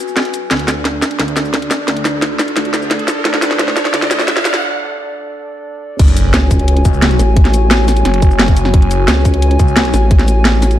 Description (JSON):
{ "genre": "dark technical drum and bass", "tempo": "175 BPM", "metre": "4/4", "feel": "straight", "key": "F# minor", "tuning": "A4 = 438 Hz", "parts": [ { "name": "dark analog pad", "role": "sustained chords", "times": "0.0-10.8 s", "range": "D4 to G#5", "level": "-20 LUFS", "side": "left 1 dB", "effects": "chorus, sidechain pumping" }, { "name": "drum and bass drum kit", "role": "drums", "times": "0.1-10.8 s", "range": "crash cymbal, hi-hat, shaker, snare drum", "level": "-16 LUFS", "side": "equal", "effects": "overdrive" }, { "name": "phased detuned saw bass", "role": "bass", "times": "0.5-9.9 s", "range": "F#1 to D2", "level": "-18 LUFS", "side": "equal", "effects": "phaser, overdrive" }, { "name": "riser and sub drop", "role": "sound effects", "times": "1.8-7.4 s", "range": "none", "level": "-21 LUFS", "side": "equal", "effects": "none" }, { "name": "electronic kick drum", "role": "drums", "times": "6.0-10.2 s", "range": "none", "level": "-10 LUFS", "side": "equal", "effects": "none" }, { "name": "vowel-sweep wobble bass", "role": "bass", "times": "6.3-10.8 s", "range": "A1 to C#2", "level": "-12 LUFS", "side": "equal", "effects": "chorus" } ], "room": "light reverb", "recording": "dark, warm production, high-pass filter", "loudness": "-10 LUFS", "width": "side -12 dB against mid", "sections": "0.0-6.0 A section; 6.0-10.8 B section", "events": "build-up 0.0-6.0; drum fill 0.0-4.6; riser 1.8-4.6; break 4.6-6.0; drop 6.0-10.8; impact 6.0-7.4", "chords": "0.0 F#sus2; 0.5 D5; 6.0 F#madd9" }